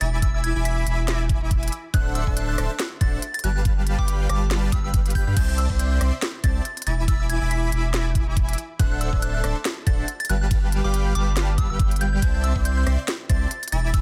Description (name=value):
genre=future bass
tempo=140 BPM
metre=4/4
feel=swing 56% on 16ths, half-time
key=C major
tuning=A4 = 440 Hz
part: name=soft synth bell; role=melody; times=0.0-14.0 s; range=D6 to B6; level=-34 LUFS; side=equal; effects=chorus, phaser, sidechain pumping, delay
part: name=dense compressed supersaw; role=riff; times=0.0-14.0 s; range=G3 to D6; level=-32 LUFS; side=equal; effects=sidechain pumping
part: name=saturated sub bass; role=bass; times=0.0-14.0 s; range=D1 to G2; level=-26 LUFS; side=equal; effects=sidechain pumping
part: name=trap drum kit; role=drums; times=0.0-14.0 s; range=crash cymbal, hi-hat, ride cymbal, rim click, snare drum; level=-32 LUFS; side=equal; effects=none
part: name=electronic kick drum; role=drums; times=0.2-14.0 s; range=none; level=-24 LUFS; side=equal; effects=none
room=little or no reverb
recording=dense, heavily limited modern master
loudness=-23 LUFS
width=mono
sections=0.0-14.0 A section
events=none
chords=0.2 E7; 1.7 D7; 3.7 G7; 5.4 C69; 7.1 E7; 8.6 D7; 10.5 G7; 12.2 C69